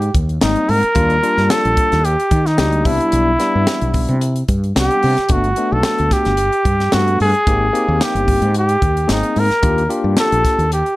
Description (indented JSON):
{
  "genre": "electric jazz fusion",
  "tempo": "111 BPM",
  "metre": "4/4",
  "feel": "swing 53% on 16ths",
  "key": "unclear",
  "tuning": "A4 = 440 Hz",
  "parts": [
    { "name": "mellow trumpet", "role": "melody", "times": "0.0-11.0 s", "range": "Eb4 to Bb4", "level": "-17 LUFS", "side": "equal", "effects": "none" },
    { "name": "woody fretless electric bass", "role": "bass", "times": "0.0-10.8 s", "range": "G1 to Eb3", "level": "-18 LUFS", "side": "equal", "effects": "none" },
    { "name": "crisp fusion drum kit", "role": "drums", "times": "0.0-11.0 s", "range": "hi-hat, kick drum, snare drum", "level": "-20 LUFS", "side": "equal", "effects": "none" },
    { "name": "barky tine electric piano", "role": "accompaniment", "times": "0.4-10.7 s", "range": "G3 to F#5", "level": "-22 LUFS", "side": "left 3 dB", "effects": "medium stereo tremolo" }
  ],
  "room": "light reverb",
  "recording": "dark, warm production",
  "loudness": "-13 LUFS",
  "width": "side -18 dB against mid",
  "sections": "0.0-11.0 A section",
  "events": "none",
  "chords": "0.0 Abmaj9; 1.0 Ebmaj9; 2.9 Cmaj9; 5.3 Gmaj9; 7.5 Abmaj9; 9.6 Ebmaj9"
}